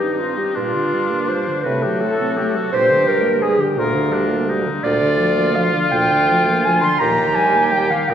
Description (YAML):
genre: classical, slow romantic movement for wind quintet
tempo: 56 BPM (dotted quarters)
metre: 6/8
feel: rubato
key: unclear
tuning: A4 = 440 Hz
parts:
  - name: silver concert flute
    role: melody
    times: 0.0-8.1 s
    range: F4 to C6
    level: -24 LUFS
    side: left 4 dB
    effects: none
  - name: clear oboe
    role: second line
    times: 0.0-8.1 s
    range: D4 to Bb4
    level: -22 LUFS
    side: left 3 dB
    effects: none
  - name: dark French horn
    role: accompaniment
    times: 0.0-8.1 s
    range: Bb2 to Eb4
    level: -24 LUFS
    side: equal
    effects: none
  - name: mellow clarinet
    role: accompaniment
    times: 0.0-8.1 s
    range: F4 to C6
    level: -20 LUFS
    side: right 3 dB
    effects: none
  - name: warm bassoon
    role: bass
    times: 0.0-8.1 s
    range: D2 to Bb2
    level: -21 LUFS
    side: right 1 dB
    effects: none
room: wet church reverb, RT60 3.1 s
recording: recorded in a church or concert hall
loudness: -15 LUFS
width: side -9 dB against mid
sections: 0.0-8.1 A section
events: none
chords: 0.0 Cm; 0.6 Gm; 1.6 F#dim/A; 2.7 Gm; 7.0 Eb